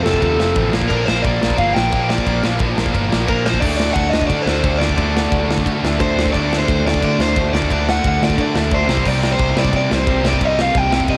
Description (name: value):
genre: punk rock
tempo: 177 BPM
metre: 4/4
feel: straight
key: unclear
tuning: A4 = 440 Hz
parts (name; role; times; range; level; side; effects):
- overdriven semi-hollow guitar; melody; 0.0-11.2 s; A4 to G5; -23 LUFS; equal; cassette tape, tape echo
- distorted electric guitar; riff; 0.0-11.2 s; F2 to D4; -26 LUFS; equal; distortion, cassette tape
- heavy high-gain guitar; riff; 0.0-11.2 s; F2 to G4; -27 LUFS; equal; distortion, cassette tape
- sludgy distorted guitar; riff; 0.0-11.2 s; F2 to D4; -25 LUFS; equal; overdrive, cassette tape
- picked electric bass; bass; 0.1-11.2 s; F1 to D3; -24 LUFS; equal; none
- big rock drum kit; drums; 0.1-11.2 s; crash cymbal, kick drum, ride cymbal, snare drum; -23 LUFS; equal; cassette tape
room: small room ambience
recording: home recording on cassette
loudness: -17 LUFS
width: mono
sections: 0.0-3.6 A section; 3.6-11.2 B section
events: none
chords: 0.0 F; 0.7 Bb; 3.6 D; 8.9 Cm